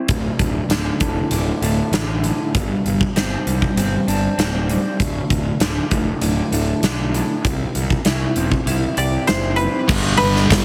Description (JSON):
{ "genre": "quiet-loud alternative rock", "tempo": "98 BPM", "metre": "4/4", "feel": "straight", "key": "unclear", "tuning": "A4 = 440 Hz", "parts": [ { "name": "electric guitar through a small old amp", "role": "arpeggios", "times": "0.0-9.9 s", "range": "D2 to G4", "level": "-25 LUFS", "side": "equal", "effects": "harmonic tremolo" }, { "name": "fuzz fingered electric bass", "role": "bass", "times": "0.1-10.6 s", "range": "D1 to C2", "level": "-25 LUFS", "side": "equal", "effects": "overdrive" }, { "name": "huge arena drum kit", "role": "drums", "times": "0.1-10.6 s", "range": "crash cymbal, hi-hat, kick drum, snare drum", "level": "-23 LUFS", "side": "equal", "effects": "none" }, { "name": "koto", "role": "melody", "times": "9.0-10.6 s", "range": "B4 to D5", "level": "-23 LUFS", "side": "equal", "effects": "digital delay" }, { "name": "thick fuzz guitar", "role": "riff", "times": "9.9-10.6 s", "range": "G2 to G3", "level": "-22 LUFS", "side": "equal", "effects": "distortion" }, { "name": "thick fuzz guitar", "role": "riff", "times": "9.9-10.6 s", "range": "G2 to G3", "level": "-24 LUFS", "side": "equal", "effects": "distortion" } ], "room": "light reverb", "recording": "heavily compressed radio sound", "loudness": "-19 LUFS", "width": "mono", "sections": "0.0-9.9 A section", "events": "none", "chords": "0.1 D5; 2.5 Gsus4; 5.0 D5; 7.4 C; 9.9 G" }